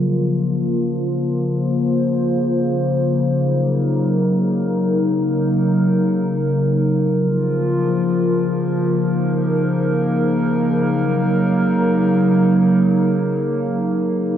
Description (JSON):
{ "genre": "hip hop", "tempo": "free time", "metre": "none", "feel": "none", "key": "Eb dorian", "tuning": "A4 = 441 Hz", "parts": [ { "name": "warbly tape-like pad", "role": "solo", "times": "0.0-14.4 s", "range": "Db3 to C5", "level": "-16 LUFS", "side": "equal", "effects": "chorus, built-in reverb" } ], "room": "wet lush hall reverb, RT60 2.5 s", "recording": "low-pass filter", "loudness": "-16 LUFS", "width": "side -10 dB against mid", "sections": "0.0-7.1 A section; 7.1-14.4 B section", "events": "filter sweep 0.0-7.1", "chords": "0.0 Bbm; 3.4 Ebm7; 7.1 Bbm; 10.8 Ebm7" }